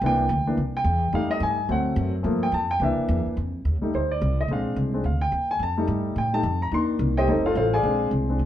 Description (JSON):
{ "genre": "jazz, big band swing", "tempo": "215 BPM", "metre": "4/4", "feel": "swing 62% on 8ths", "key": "F mixolydian", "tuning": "A4 = 445 Hz", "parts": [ { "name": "warm grand piano", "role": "accompaniment", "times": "0.0-8.4 s", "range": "Eb3 to C6", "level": "-23 LUFS", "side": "left 1 dB", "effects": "none" }, { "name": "upright bass", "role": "bass", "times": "0.0-8.5 s", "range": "F1 to A2", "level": "-25 LUFS", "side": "equal", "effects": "none" } ], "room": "wet club reverb, RT60 0.8 s", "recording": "heard from further back in the room", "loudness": "-21 LUFS", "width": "side -11 dB against mid", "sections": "0.0-3.4 A section; 3.4-8.5 A section", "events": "grand piano solo 0.0-3.4, 3.4-8.5", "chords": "0.0 C7; 1.1 F7; 1.7 D7; 2.2 Gm7; 2.8 C7; 3.4 F7; 4.5 Bb7; 5.6 F7; 6.7 Cm7; 7.3 F7; 7.8 Bb7" }